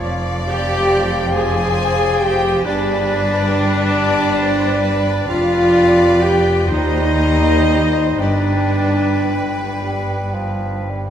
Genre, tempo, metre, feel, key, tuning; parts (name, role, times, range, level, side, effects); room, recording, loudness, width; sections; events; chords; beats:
classical, slow romantic movement for symphony orchestra; 36-47 BPM (dotted quarters); 6/8; rubato; A4 = 440 Hz
rich studio violin section; melody; 0.0-11.1 s; Bb4 to D5; -28 LUFS; equal
mellow hollow silver concert flute; second line; 0.0-11.0 s; D5 to G5; -28 LUFS; left 2 dB
warm clarinet; second line; 0.0-9.8 s; D4 to Ab4; -26 LUFS; left 1 dB
warm oboe; second line; 0.0-11.0 s; B4 to D5; -28 LUFS; left 1 dB
warm bassoon; accompaniment; 0.0-11.1 s; F3 to G3; -26 LUFS; right 3 dB
rich chamber double bass section; bass; 0.0-11.1 s; F1 to Eb2; -23 LUFS; equal
warm symphonic cello section; bass; 0.0-11.1 s; Eb2 to G2; -23 LUFS; right 1 dB
rich chamber violin section; second line; 0.5-9.8 s; D5 to Ab5; -25 LUFS; left 4 dB
rich chamber viola section; accompaniment; 0.5-9.8 s; D4 to Ab4; -24 LUFS; right 1 dB
dark French horn section; sustained chords; 0.5-9.8 s; D4 to Ab4; -18 LUFS; equal
wet cathedral reverb, RT60 4.7 s; in a vast, echoing space; -14 LUFS; side -9 dB against mid
0.0-11.1 A section
0.0 Ddim/F; 2.7 G; 5.3 G7/F; 6.7 Cm/Eb; 8.2 G
| 0.02 1.34 | 2.65 3.94 | 5.29 6.70 | 8.21 9.80